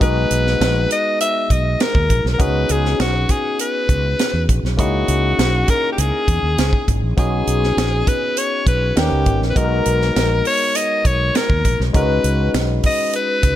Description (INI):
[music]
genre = polished 1980s jazz-funk pop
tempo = 100 BPM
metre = 4/4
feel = straight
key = G# minor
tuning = A4 = 439 Hz
[part]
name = raspy alto saxophone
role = melody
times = 0.0-13.6 s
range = F#4 to E5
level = -20 LUFS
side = left 1 dB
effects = none
[part]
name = barky tine electric piano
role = accompaniment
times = 0.0-13.6 s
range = G#3 to B4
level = -23 LUFS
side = left 2 dB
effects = wide subtle chorus
[part]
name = mellow fretless electric bass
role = bass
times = 0.0-13.6 s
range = G#1 to E2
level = -19 LUFS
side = equal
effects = none
[part]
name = tight funk drum kit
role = drums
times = 0.0-13.6 s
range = hi-hat, kick drum, snare drum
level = -20 LUFS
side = right 1 dB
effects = none
[sound]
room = studio reverb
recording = none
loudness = -15 LUFS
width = side -12 dB against mid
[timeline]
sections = 0.0-13.6 A section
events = none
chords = 0.0 G#m9; 2.4 C#9sus4; 4.8 F#13; 7.2 B69; 9.0 D#7b13; 9.6 G#m9; 11.9 C#9sus4